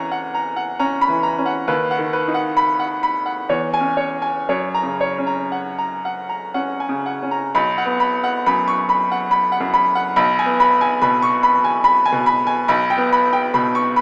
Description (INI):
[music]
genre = classical, romantic character piece for solo piano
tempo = 58-74 BPM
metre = 3/4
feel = rubato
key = B major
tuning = A4 = 439 Hz
[part]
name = bright baby grand piano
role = solo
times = 0.0-14.0 s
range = B1 to C#6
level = -19 LUFS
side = equal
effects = none
[sound]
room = wet scoring stage reverb, RT60 1.5 s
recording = small speaker sound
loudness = -19 LUFS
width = mono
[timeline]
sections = 0.0-7.5 A section; 7.5-14.0 B section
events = none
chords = 0.0 F#7/E; 1.7 B/D#; 3.5 C#m/E; 4.5 F#; 7.5 B5; 10.2 G#madd11/B; 12.7 G/B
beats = 0.79 | 1.68 2.56 3.49 | 4.49 5.53 6.55 | 7.54 8.45 9.30 | 10.16 11.02 11.84 | 12.68 13.53